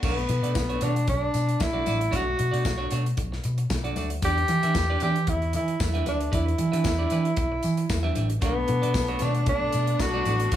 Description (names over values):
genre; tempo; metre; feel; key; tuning
disco; 114 BPM; 4/4; straight; B minor; A4 = 440 Hz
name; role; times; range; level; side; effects
breathy tenor saxophone; melody; 0.0-10.6 s; B3 to G4; -27 LUFS; equal; none
semi-hollow electric guitar; accompaniment; 0.0-10.6 s; A3 to E5; -33 LUFS; right 5 dB; none
hollow-body short-scale picked electric bass; bass; 0.0-10.6 s; A1 to E3; -26 LUFS; equal; none
modern studio drum kit; drums; 0.0-10.6 s; crash cymbal, hi-hat, kick drum, snare drum; -30 LUFS; equal; none
congas; percussion; 0.0-10.6 s; none; -38 LUFS; left 8 dB; none
tambourine; percussion; 0.0-10.6 s; none; -42 LUFS; left 17 dB; none
rich studio string section; sustained chords; 8.4-10.6 s; D3 to D4; -34 LUFS; left 5 dB; none
room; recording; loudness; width
studio ambience; small room ambience; -22 LUFS; side -11 dB against mid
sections
0.0-10.6 A section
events
none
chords
0.0 Bm9; 4.2 Em7; 8.4 Bm9